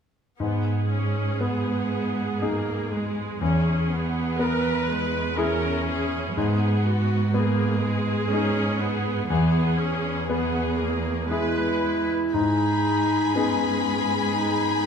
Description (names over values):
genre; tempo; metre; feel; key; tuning
cinematic, emotional film score for orchestra; 60 BPM; 3/4; rubato; G# minor; A4 = 440 Hz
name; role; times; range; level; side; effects
clear grand piano; accompaniment; 0.4-14.9 s; E2 to G#4; -26 LUFS; left 2 dB; none
rich studio viola section; accompaniment; 0.4-14.9 s; G#3 to B4; -28 LUFS; right 1 dB; none
warm studio cello section; bass; 0.4-14.9 s; E2 to G#2; -28 LUFS; right 3 dB; none
warm clarinet; second line; 11.3-14.9 s; C#4 to E4; -24 LUFS; equal; none
rich studio violin section; second line; 12.3-14.9 s; G#5 to B5; -27 LUFS; left 4 dB; none
room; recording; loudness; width
moderate concert hall reverb, RT60 2.2 s; minimal, uncompressed stereo recording; -22 LUFS; side -7 dB against mid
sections
0.4-12.3 A section; 12.3-14.9 B section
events
none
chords
0.4 G#m; 3.4 E; 6.4 G#m; 9.3 E; 12.3 G#m